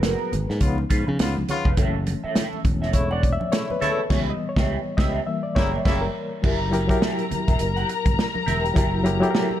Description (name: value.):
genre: lush 1970s-style soul.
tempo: 103 BPM.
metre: 4/4.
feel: swing 58% on 16ths.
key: unclear.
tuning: A4 = 440 Hz.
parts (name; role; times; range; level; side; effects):
reed electric piano; accompaniment; 0.0-9.6 s; E3 to E5; -26 LUFS; left 2 dB; tremolo.
electric guitar through a small old amp; riff; 0.0-9.6 s; B3 to F#5; -30 LUFS; right 4 dB; wah, lush chorus.
modern bright fingered electric bass; bass; 0.0-9.2 s; E1 to C#3; -26 LUFS; equal; none.
warm soul drum kit; drums; 0.0-9.5 s; crash cymbal, hi-hat, kick drum, snare drum; -23 LUFS; equal; none.
congas; percussion; 0.0-9.6 s; none; -34 LUFS; right 3 dB; none.
warm horn section; stabs; 0.6-6.0 s; C#3 to E#4; -29 LUFS; left 3 dB; none.
dark studio string section; second line; 6.4-9.6 s; A#4 to A#5; -28 LUFS; left 5 dB; none.
room: light reverb, small room ambience.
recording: dark, warm production.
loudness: -20 LUFS.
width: side -11 dB against mid.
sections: 0.0-6.4 A section; 6.4-9.6 B section.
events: reed electric piano solo 0.0-6.4; band accent 4.1-6.4.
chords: 0.0 G#m9; 0.6 C#7; 1.8 F#m7; 4.1 C#m7b5; 5.3 F#7b9.